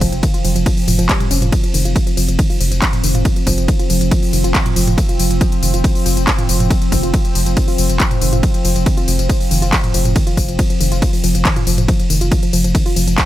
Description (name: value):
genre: driving peak-time techno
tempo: 139 BPM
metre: 4/4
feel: straight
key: unclear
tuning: A4 = 441 Hz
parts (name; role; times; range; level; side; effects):
- woody wave-folded pluck; riff; 0.0-13.2 s; Eb3 to F4; -22 LUFS; equal; chorus, tube saturation, sidechain pumping, digital delay
- saturated sub bass; bass; 0.0-13.2 s; F1; -17 LUFS; equal; tube saturation, sidechain pumping, low-pass filter
- deep dark ambient pad; drone; 0.0-13.3 s; F3 to C4; -23 LUFS; equal; chorus, built-in reverb, sidechain pumping
- electronic kick drum; drums; 0.0-13.3 s; none; -16 LUFS; equal; overdrive
- techno drum kit; drums; 0.0-13.3 s; handclaps, hi-hat, ride cymbal, tambourine, toms; -20 LUFS; equal; overdrive
room: little or no reverb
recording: none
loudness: -13 LUFS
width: side -14 dB against mid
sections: 0.0-13.3 A section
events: none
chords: 0.0 F5